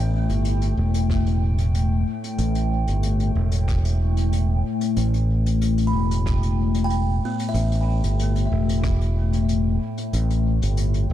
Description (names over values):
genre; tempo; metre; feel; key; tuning
ambient dub; 93 BPM; 4/4; straight; unclear; A4 = 440 Hz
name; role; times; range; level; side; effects
warbly tape-like pad; sustained chords; 0.0-11.1 s; A2 to G5; -26 LUFS; left 4 dB; chorus, built-in reverb, phaser
buzzing kalimba; arpeggios; 0.0-1.0, 5.9-9.3 s; B3 to B5; -33 LUFS; right 4 dB; tape echo
modern bright fingered electric bass; bass; 0.0-11.1 s; E1 to A1; -20 LUFS; equal; none
vintage brush drum kit; drums; 0.3-11.1 s; hi-hat, rim click; -37 LUFS; left 2 dB; dub echo
electronic kick drum; drums; 1.1-9.0 s; none; -25 LUFS; equal; none
room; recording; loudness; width
studio ambience; dark, warm production; -19 LUFS; side -12 dB against mid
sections
0.0-11.1 A section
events
none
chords
0.0 A5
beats
0.45 1.10 1.74 | 2.39 3.03 3.68 4.32 | 4.97 5.61 6.26 6.90 | 7.55 8.19 8.84 9.48 | 10.13 10.77